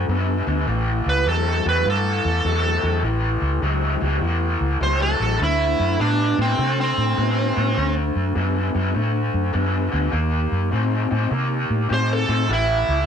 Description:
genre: electric blues shuffle.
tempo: 102 BPM.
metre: 4/4.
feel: swing 66% on 8ths.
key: unclear.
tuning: A4 = 442 Hz.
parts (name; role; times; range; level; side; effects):
raw garage guitar; riff; 0.0-13.1 s; A2 to B#3; -23 LUFS; left 2 dB; overdrive, harmonic tremolo.
vintage muted fingered electric bass; bass; 0.0-13.1 s; A1 to C3; -22 LUFS; equal; none.
smooth overdriven lead guitar; melody; 1.1-7.9, 11.9-13.1 s; C4 to C5; -21 LUFS; right 2 dB; none.
room: light reverb.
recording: none.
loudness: -18 LUFS.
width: side -8 dB against mid.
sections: 0.0-13.1 A section.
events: none.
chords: 0.0 D; 0.7 A; 5.4 D7; 10.1 D#dim7(no3); 12.5 A.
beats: 0.09 | 0.68 1.27 1.86 2.45 | 3.04 3.63 4.22 4.81 | 5.40 5.99 6.58 7.17 | 7.77 8.36 8.95 9.54 | 10.13 10.73 11.32 11.91 | 12.50.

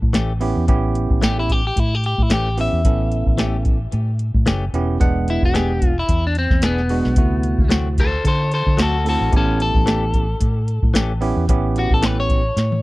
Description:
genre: straight-eighth soul blues.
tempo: 111 BPM.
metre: 4/4.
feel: swing 55% on 16ths.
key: A mixolydian.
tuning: A4 = 440 Hz.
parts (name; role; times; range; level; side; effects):
vintage muted fingered electric bass; bass; 0.0-12.8 s; E1 to D3; -20 LUFS; equal; none.
soft vintage rhythm box; drums; 0.0-12.8 s; hi-hat, kick drum, snare drum, toms; -19 LUFS; equal; none.
direct-recorded clean electric guitar; stabs; 0.1-12.2 s; E3 to G#4; -28 LUFS; left 4 dB; spring reverb, tape echo.
bell-like tine electric piano; accompaniment; 0.4-12.4 s; C3 to F#5; -23 LUFS; right 4 dB; none.
electric guitar at the edge of break-up; melody; 1.2-12.8 s; B3 to E5; -22 LUFS; left 2 dB; none.
room: little or no reverb.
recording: dry, close 1970s-style studio recording.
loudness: -16 LUFS.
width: side -19 dB against mid.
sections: 0.0-12.8 A section.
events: clean electric guitar solo 0.0-12.8; drum fill 12.6.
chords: 0.0 A7; 5.0 E7; 7.2 D7; 9.3 A7.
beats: 0.15 | 0.69 1.23 1.76 2.31 | 2.85 3.38 3.92 4.46 | 5.00 5.54 6.08 6.62 | 7.17 7.71 8.24 8.79 | 9.32 9.87 10.41 10.95 | 11.49 12.03 12.57.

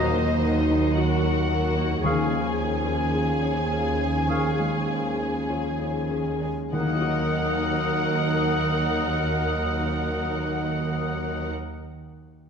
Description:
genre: cinematic, emotional film score for orchestra.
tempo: 48-61 BPM.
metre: 4/4.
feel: rubato.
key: Eb minor.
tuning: A4 = 440 Hz.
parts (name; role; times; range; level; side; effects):
rich symphonic violin section; melody; 0.0-11.5 s; Eb5 to Ab5; -32 LUFS; left 1 dB; none.
clear clarinet; second line; 0.0-11.5 s; Gb4 to Bb4; -37 LUFS; left 2 dB; none.
clear oboe; second line; 0.0-11.5 s; Eb5 to Gb5; -33 LUFS; right 1 dB; none.
hollow flute section; second line; 0.0-11.5 s; Bb5 to Eb6; -34 LUFS; left 3 dB; none.
rich symphonic violin section; second line; 0.0-11.5 s; Ab4 to C5; -35 LUFS; left 3 dB; none.
rich studio viola section; accompaniment; 0.0-11.5 s; Eb4 to Ab4; -32 LUFS; right 2 dB; none.
warm grand piano; accompaniment; 0.0-12.5 s; Eb2 to Eb5; -31 LUFS; left 3 dB; none.
mellow French horn section; sustained chords; 0.0-11.5 s; F3 to Db4; -31 LUFS; left 2 dB; none.
concert harp; arpeggios; 0.0-11.8 s; Eb3 to Bb5; -36 LUFS; left 8 dB; none.
rich symphonic cello section; bass; 0.0-11.5 s; Eb2; -30 LUFS; right 4 dB; none.
rich symphonic double bass section; bass; 0.0-11.5 s; Eb2; -30 LUFS; right 3 dB; none.
timpani; percussion; 2.0-11.5 s; Eb3; -32 LUFS; left 2 dB; none.
room: wet scoring stage reverb, RT60 1.5 s.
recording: dark, warm production.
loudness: -22 LUFS.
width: side -6 dB against mid.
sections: 0.0-6.7 A section; 6.7-11.7 B section.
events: slowing down 0.0-6.7.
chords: 0.0 Ebm; 2.0 Db/Eb; 6.7 Ebm.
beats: 0.97 | 2.03 3.14 4.29 5.48 | 6.73 7.97 9.22 10.48.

